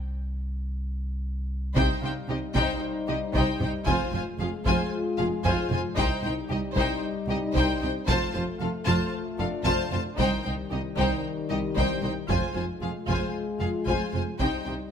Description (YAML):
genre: cinematic, hybrid orchestral and electronic film score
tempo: 114 BPM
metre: 4/4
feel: straight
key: C minor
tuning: A4 = 442 Hz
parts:
  - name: warm sub bass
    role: bass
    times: 0.0-1.8 s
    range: C2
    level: -30 LUFS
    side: equal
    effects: none
  - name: rich studio violin section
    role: melody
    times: 1.8-14.7 s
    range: Eb5 to A5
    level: -33 LUFS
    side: left 2 dB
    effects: none
  - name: dark symphonic violin section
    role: second line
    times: 1.8-14.7 s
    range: G4 to C5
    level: -34 LUFS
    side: left 3 dB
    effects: none
  - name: warm symphonic viola section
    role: accompaniment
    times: 1.8-14.7 s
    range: Eb4 to F4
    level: -33 LUFS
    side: left 1 dB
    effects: none
  - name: mellow French horn section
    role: sustained chords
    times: 1.8-14.9 s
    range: Eb3 to F4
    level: -32 LUFS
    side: left 4 dB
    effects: none
  - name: rich symphonic cello section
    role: bass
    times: 1.8-14.7 s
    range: C2 to C3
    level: -31 LUFS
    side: right 3 dB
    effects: none
  - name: warm chamber double bass section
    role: bass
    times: 1.8-14.7 s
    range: F1 to C2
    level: -32 LUFS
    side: right 3 dB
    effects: none
  - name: taiko ensemble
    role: drums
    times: 1.8-14.9 s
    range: none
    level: -32 LUFS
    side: left 1 dB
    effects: none
  - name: clear grand piano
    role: texture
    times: 2.0-12.3 s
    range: D4 to F5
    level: -44 LUFS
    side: left 3 dB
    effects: none
room: light reverb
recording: close, detailed microphones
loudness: -25 LUFS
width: side -8 dB against mid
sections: 0.0-1.8 A section; 1.8-14.9 A section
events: break 0.0-1.8; drum fill 1.0-1.8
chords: 0.0 N.C.; 1.8 Cm; 3.9 Fm; 6.0 Cm; 8.1 F; 10.2 Cm; 12.3 Fm; 14.4 Cm